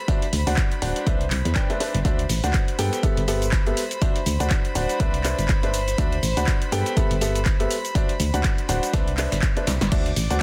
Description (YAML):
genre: piano house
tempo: 122 BPM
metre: 4/4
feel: swing 57% on 16ths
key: D mixolydian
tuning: A4 = 440 Hz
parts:
  - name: warm studio violin section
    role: sustained chords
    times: 0.0-10.4 s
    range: C5 to D6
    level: -35 LUFS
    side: equal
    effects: sidechain pumping
  - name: clear upright piano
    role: riff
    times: 0.1-10.4 s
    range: B3 to G5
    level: -29 LUFS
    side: equal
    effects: sidechain pumping, digital delay
  - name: dusty soul sampler-style drum kit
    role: drums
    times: 0.1-10.4 s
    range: hi-hat, snare drum, tambourine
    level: -39 LUFS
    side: equal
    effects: none
  - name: electronic kick drum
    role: drums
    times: 0.1-10.0 s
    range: none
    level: -25 LUFS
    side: equal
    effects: none
  - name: punchy analog drum machine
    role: drums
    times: 0.1-10.4 s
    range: cabasa, crash cymbal, handclaps, hi-hat, snare drum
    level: -32 LUFS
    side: equal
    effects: none
  - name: solid FM bass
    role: bass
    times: 0.3-10.4 s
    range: D1 to G2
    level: -27 LUFS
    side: equal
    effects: sidechain pumping
room: light reverb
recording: dense, heavily limited modern master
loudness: -23 LUFS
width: mono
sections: 0.0-10.4 A section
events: drum fill 9.7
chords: 0.1 D9; 1.1 Cmaj9; 2.0 D9; 2.8 G69; 4.0 D9; 5.0 Cmaj9; 6.0 D9; 6.7 G69; 8.0 D9; 8.9 Cmaj9; 9.9 D9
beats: | 0.08 0.57 1.07 1.56 | 2.05 2.54 3.03 3.52 | 4.02 4.51 5.00 5.49 | 5.98 6.48 6.97 7.46 | 7.95 8.44 8.94 9.43 | 9.92 10.41